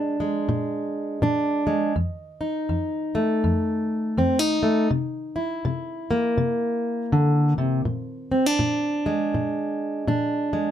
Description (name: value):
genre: blues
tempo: 81 BPM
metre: 4/4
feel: swing 62% on 8ths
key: unclear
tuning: A4 = 440 Hz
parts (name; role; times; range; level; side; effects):
- fingerpicked plugged-in steel-string acoustic guitar; solo; 0.0-10.7 s; F2 to E4; -21 LUFS; equal; none
room: light reverb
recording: close, detailed microphones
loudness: -22 LUFS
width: side -10 dB against mid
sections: 0.0-10.7 A section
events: none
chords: 0.0 Bb7; 1.9 F7; 4.9 C7; 7.8 Bb7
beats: 0.47 1.21 | 1.95 2.68 3.42 4.16 | 4.90 5.64 6.37 7.11 | 7.85 8.59 9.33 10.06